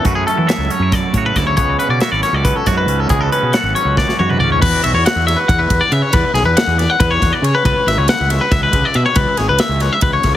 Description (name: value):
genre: math rock and midwest emo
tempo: 277 BPM (eighths)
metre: 7/8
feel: straight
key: unclear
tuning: A4 = 440 Hz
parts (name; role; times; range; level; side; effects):
- twangy electric guitar; accompaniment; 0.0-6.1 s; F#2 to A4; -22 LUFS; right 11 dB; spring reverb
- twangy electric guitar; arpeggios; 0.0-10.3 s; F#4 to F#5; -16 LUFS; left 3 dB; analog delay
- fuzz fingered electric bass; bass; 0.0-10.3 s; G#1 to E3; -18 LUFS; equal; overdrive
- modern studio drum kit; drums; 0.0-10.3 s; crash cymbal, hi-hat, kick drum, ride cymbal, snare drum, toms; -18 LUFS; equal; none
room: light reverb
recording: heavily compressed radio sound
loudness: -12 LUFS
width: side -12 dB against mid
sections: 0.0-4.6 A section; 4.6-10.4 B section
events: drum fill 4.0-4.6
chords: 0.0 F#m7; 1.6 C#7sus4; 4.6 Esus2; 7.7 C#m7